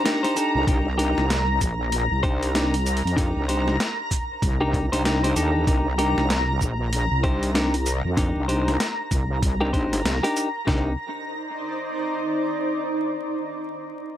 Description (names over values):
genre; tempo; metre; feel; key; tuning
glitch hop; 96 BPM; 4/4; swing 60% on 16ths; C minor; A4 = 440 Hz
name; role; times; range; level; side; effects
clean electric guitar; stabs; 0.0-10.9 s; D4 to C5; -26 LUFS; left 1 dB; vintage 12-bit sampler grit, sidechain pumping, tape echo
granular cloud pad; texture; 0.0-13.1 s; Eb4 to Bb5; -27 LUFS; equal; built-in reverb, sidechain pumping
boom bap sampler-style drum kit; drums; 0.1-10.5 s; hi-hat, shaker, snare drum; -28 LUFS; equal; none
wobble bass; bass; 0.6-11.0 s; Bb1 to F2; -24 LUFS; equal; chorus, tube saturation
boom bap sampler-style drum kit; drums; 0.7-10.9 s; kick drum, snare drum; -25 LUFS; equal; none
room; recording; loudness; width
light reverb; vinyl crackle; -21 LUFS; side -12 dB against mid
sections
0.0-10.7 A section; 10.7-13.2 B section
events
drop 0.0-10.7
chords
0.0 Cm9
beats
0.05 | 0.68 1.30 1.93 2.55 | 3.18 3.80 4.43 5.05 | 5.68 6.30 6.93 7.55 | 8.18 8.80 9.43 10.05 | 10.68 11.30 11.93 12.55